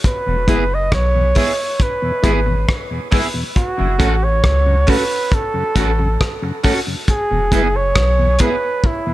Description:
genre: dub reggae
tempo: 68 BPM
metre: 4/4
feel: straight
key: E major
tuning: A4 = 440 Hz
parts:
  - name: cloth-damped thuddy drum kit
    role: drums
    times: 0.0-9.1 s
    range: hi-hat, kick drum, rim click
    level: -18 LUFS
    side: equal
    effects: none
  - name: warm flugelhorn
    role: melody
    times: 0.1-9.1 s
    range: E4 to D#5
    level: -20 LUFS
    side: right 2 dB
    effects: dub echo
  - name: mellow tonewheel organ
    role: accompaniment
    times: 0.3-9.1 s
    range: E2 to F#4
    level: -25 LUFS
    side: left 2 dB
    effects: chorus vibrato, slow rotary speaker
  - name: soft dub sub bass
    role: bass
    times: 0.3-8.4 s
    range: E1 to C#2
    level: -17 LUFS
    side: equal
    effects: none
  - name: electric guitar at the edge of break-up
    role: accompaniment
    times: 0.5-8.6 s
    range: B3 to A4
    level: -24 LUFS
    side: right 3 dB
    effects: wide subtle chorus, dub echo
room: small room ambience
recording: none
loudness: -14 LUFS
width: side -15 dB against mid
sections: 0.0-9.1 A section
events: none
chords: 0.0 E; 3.6 F#m; 7.1 E

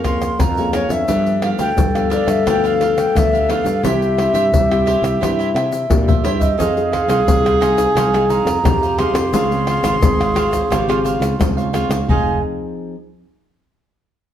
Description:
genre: samba and choro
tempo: 87 BPM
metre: 4/4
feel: straight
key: F minor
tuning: A4 = 441 Hz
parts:
  - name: mellow clarinet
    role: second line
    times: 0.0-12.4 s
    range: E4 to Bb4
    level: -21 LUFS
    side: left 1 dB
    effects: none
  - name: cavaquinho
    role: accompaniment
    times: 0.0-12.4 s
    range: D4 to Ab5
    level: -25 LUFS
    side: right 3 dB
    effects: none
  - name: nylon-string guitar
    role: accompaniment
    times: 0.0-12.9 s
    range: G2 to Ab4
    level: -24 LUFS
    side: left 3 dB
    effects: none
  - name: sustaining fretless electric bass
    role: bass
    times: 0.0-12.4 s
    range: F1 to C3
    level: -22 LUFS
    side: right 1 dB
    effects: none
  - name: egg shaker, surdo, pandeiro and tamborim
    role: percussion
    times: 0.0-12.3 s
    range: none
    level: -20 LUFS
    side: left 1 dB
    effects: none
  - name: baroque flute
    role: melody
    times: 0.1-12.4 s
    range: Db5 to C6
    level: -21 LUFS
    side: equal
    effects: plate reverb
room: wet studio reverb, RT60 0.8 s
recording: heard from further back in the room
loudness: -14 LUFS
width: side -10 dB against mid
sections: 0.0-6.6 A section; 6.6-12.1 B section; 12.1-14.3 C section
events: drum fill 5.6-6.6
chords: 0.0 Bbm7/F; 1.1 G7; 3.8 C; 6.6 Fm7; 9.3 Dbmaj7; 12.1 Fm7

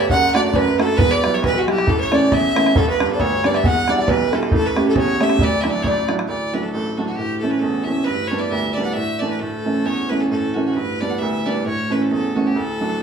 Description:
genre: celtic folk, Celtic polka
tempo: 135 BPM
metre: 2/4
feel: swing 56% on 8ths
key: unclear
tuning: A4 = 436 Hz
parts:
  - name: bright fiddle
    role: melody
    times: 0.0-13.0 s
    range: F#4 to F#5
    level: -23 LUFS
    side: right 1 dB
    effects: plate reverb
  - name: mellow hollow wooden flute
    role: second line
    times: 0.0-6.1 s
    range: F#4 to F#5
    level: -22 LUFS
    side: left 2 dB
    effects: none
  - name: bright upright piano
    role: accompaniment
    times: 0.0-13.0 s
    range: D1 to G4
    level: -20 LUFS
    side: right 3 dB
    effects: none
  - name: bodhran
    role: percussion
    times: 0.1-6.3 s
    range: none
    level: -22 LUFS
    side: equal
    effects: none
  - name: pedal harmonium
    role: drone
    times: 6.3-13.0 s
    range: D2 to A2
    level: -27 LUFS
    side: left 3 dB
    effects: none
room: wet studio reverb, RT60 0.5 s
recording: small room reverb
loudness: -16 LUFS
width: side -7 dB against mid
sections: 0.0-6.3 A section; 6.3-13.0 B section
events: none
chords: 0.1 D/F#; 1.0 Emadd9; 1.9 A; 2.8 G; 3.6 Em7; 4.5 A7; 5.4 Dadd9; 6.3 D; 7.2 A; 8.1 G; 9.0 Asus4; 9.4 A; 10.8 G; 11.7 A

